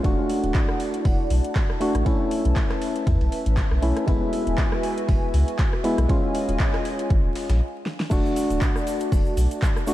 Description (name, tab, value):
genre	deep house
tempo	119 BPM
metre	4/4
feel	swing 56% on 16ths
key	unclear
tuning	A4 = 440 Hz
part	hollow soft pad	sustained chords	0.0-9.9 s	C#4 to A5	-31 LUFS	equal	chorus, sidechain pumping
part	percussive organ stab	stabs	0.0-9.9 s	G#3 to F#4	-26 LUFS	equal	chorus, cassette tape, sidechain pumping, ping-pong delay
part	round analog bass	bass	0.0-9.5 s	D1 to E2	-22 LUFS	equal	sidechain pumping
part	breakbeat sampler-style drum kit	drums	0.0-9.9 s	hi-hat, ride cymbal, snare drum	-44 LUFS	right 2 dB	sidechain pumping on cymbals, high-pass filter on cymbals, high-pass filter on snare, sidechain pumping on hats, high-pass filter on hats, high-pass filter on room
part	deep house drum kit	drums	0.0-9.9 s	crash cymbal, handclaps, hi-hat, rim click, snare drum	-34 LUFS	equal	overdrive
part	electronic kick drum	drums	0.0-9.7 s	none	-22 LUFS	equal	none
part	egg shaker	percussion	8.1-9.9 s	none	-43 LUFS	right 3 dB	none
room	light reverb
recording	vinyl crackle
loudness	-20 LUFS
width	side -14 dB against mid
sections	0.0-8.1 A section; 8.1-9.9 A section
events	stop 7.6-8.1; drum fill 7.9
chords	0.0 E9sus4; 2.1 B9sus4; 4.1 F#9sus4; 6.1 D#9sus4; 8.1 E9sus4